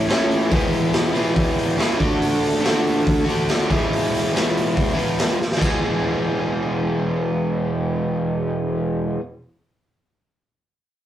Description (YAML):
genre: garage rock duo or trio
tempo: 141 BPM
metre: 4/4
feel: straight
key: E mixolydian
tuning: A4 = 440 Hz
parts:
  - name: overdriven electric guitar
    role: riff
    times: 0.0-9.2 s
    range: E2 to G#4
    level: -20 LUFS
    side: equal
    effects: none
  - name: raw garage drum kit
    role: drums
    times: 0.1-5.7 s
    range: hi-hat, kick drum, snare drum, splash cymbal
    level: -22 LUFS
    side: equal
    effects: none
room: moderate studio reverb, RT60 0.6 s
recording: rough rehearsal-room recording, warm saturation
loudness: -18 LUFS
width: side -11 dB against mid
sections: 0.0-5.6 A section; 5.6-9.0 B section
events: drum fill 5.4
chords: 0.0 A; 0.5 E; 2.0 D; 3.7 E